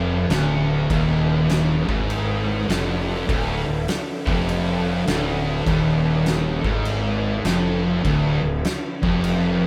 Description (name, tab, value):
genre	stoner and doom metal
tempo	101 BPM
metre	4/4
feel	swing 65% on 8ths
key	D minor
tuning	A4 = 442 Hz
part	bowed-like drone	sustained chords	1.3-9.7 s	D3 to A4	-36 LUFS	equal	built-in reverb, phaser
part	fuzz guitar	riff	0.0-9.7 s	D2 to G#2	-29 LUFS	equal	distortion
part	thick fuzz guitar	riff	0.0-9.7 s	D2 to G#2	-28 LUFS	equal	none
part	thick fuzz guitar	riff	0.0-9.7 s	D2 to G#2	-27 LUFS	equal	distortion
part	fuzz fingered electric bass	bass	0.0-9.7 s	D1 to G#1	-29 LUFS	equal	overdrive
part	oversized low-tuned drum kit	drums	0.3-9.4 s	crash cymbal, kick drum, snare drum	-28 LUFS	equal	none
room	light reverb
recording	band playing live in one room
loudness	-21 LUFS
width	mono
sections	0.0-9.7 A section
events	none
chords	0.0 Dm